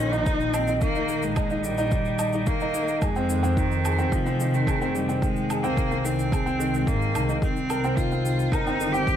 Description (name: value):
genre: piano and strings electronica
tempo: 109 BPM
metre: 4/4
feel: straight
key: F minor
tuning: A4 = 438 Hz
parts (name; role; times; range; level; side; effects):
- clear cello; melody; 0.0-9.2 s; Eb3 to G4; -28 LUFS; equal; none
- dark upright piano; riff; 0.0-9.2 s; Eb3 to Eb5; -26 LUFS; equal; digital delay
- warm studio double bass section; bass; 0.0-9.2 s; F1 to Ab2; -28 LUFS; equal; sidechain pumping
- shaker and woodblock; drums; 0.1-9.2 s; none; -36 LUFS; right 2 dB; overdrive
- electronic kick drum; drums; 0.3-9.2 s; none; -27 LUFS; equal; overdrive
room: light reverb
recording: none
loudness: -22 LUFS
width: side -10 dB against mid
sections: 0.0-9.2 A section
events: none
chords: 0.0 Eb; 3.0 Fm7; 7.4 Cm7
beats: 0.27 | 0.82 1.37 1.92 2.47 | 3.02 3.57 4.12 4.67 | 5.22 5.77 6.32 6.87 | 7.42 7.97 8.52 9.07